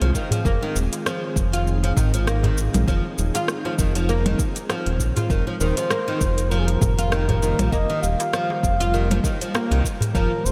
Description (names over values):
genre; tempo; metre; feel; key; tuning
organic downtempo; 99 BPM; 4/4; swing 56% on 16ths; F minor; A4 = 440 Hz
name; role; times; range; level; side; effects
ethereal airy pad; sustained chords; 0.0-10.5 s; Eb3 to Ab4; -33 LUFS; equal; ensemble chorus, built-in reverb, sidechain pumping
oud; arpeggios; 0.0-10.3 s; Eb3 to F4; -29 LUFS; equal; delay
round analog bass; bass; 0.0-10.5 s; Eb1 to C2; -24 LUFS; equal; tube saturation, sidechain pumping
deep house drum kit; drums; 0.0-10.5 s; congas, hi-hat, rim click, shaker; -30 LUFS; equal; none
electronic kick drum; drums; 0.1-10.3 s; none; -26 LUFS; equal; none
darbuka; percussion; 0.3-10.1 s; none; -30 LUFS; equal; none
trumpet with bucket mute; melody; 5.6-10.5 s; Ab4 to F5; -29 LUFS; equal; analog delay
room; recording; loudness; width
moderate lush hall reverb, RT60 2.5 s; dreamy mix soaked in reverb; -22 LUFS; mono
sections
0.0-10.5 A section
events
none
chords
0.0 Fm7; 5.3 Ebadd9